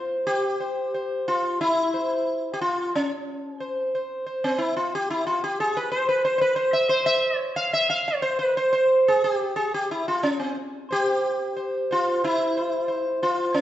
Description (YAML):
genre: indian classical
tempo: 90 BPM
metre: 4/4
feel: straight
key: C raga bhairav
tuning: A4 = 439 Hz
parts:
  - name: sitar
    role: solo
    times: 0.0-13.6 s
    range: C4 to F5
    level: -22 LUFS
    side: equal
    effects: none
room: moderate recital hall reverb, RT60 1.3 s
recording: nothing above 7.9 kHz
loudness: -22 LUFS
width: side -12 dB against mid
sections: 0.0-13.6 A section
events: none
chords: none